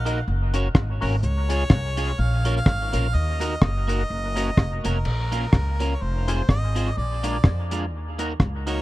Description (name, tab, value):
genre	ska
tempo	126 BPM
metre	4/4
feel	swing 57% on 8ths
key	Bb minor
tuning	A4 = 440 Hz
part	clear harmonica	melody	0.0-8.8 s	Bb4 to Gb5	-31 LUFS	right 1 dB	dub echo, plate reverb
part	upright bass	bass	0.0-8.8 s	F1 to F2	-24 LUFS	equal	none
part	electric guitar at the edge of break-up	accompaniment	0.1-8.8 s	Ab3 to Eb5	-32 LUFS	right 4 dB	dub echo, plate reverb
part	overdriven tonewheel organ	stabs	0.1-8.8 s	Ab3 to Bb4	-33 LUFS	left 5 dB	chorus vibrato, slow rotary speaker, dub echo, plate reverb
part	deep reggae drum kit	drums	0.1-8.8 s	crash cymbal, hi-hat, kick drum, rim click	-20 LUFS	equal	none
room	little or no reverb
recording	dark, warm production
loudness	-20 LUFS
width	side -17 dB against mid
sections	0.0-5.0 A section; 5.0-8.8 B section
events	none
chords	0.3 Gb; 1.2 Db; 2.2 Bbm; 3.1 Ebm; 4.1 Gb; 5.0 Bbm; 6.0 Fm; 7.0 Bb7; 7.9 Ebm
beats	0.27 0.75 | 1.23 1.70 2.18 2.66 | 3.14 3.62 4.09 4.57 | 5.05 5.53 6.01 6.49 | 6.96 7.44 7.92 8.40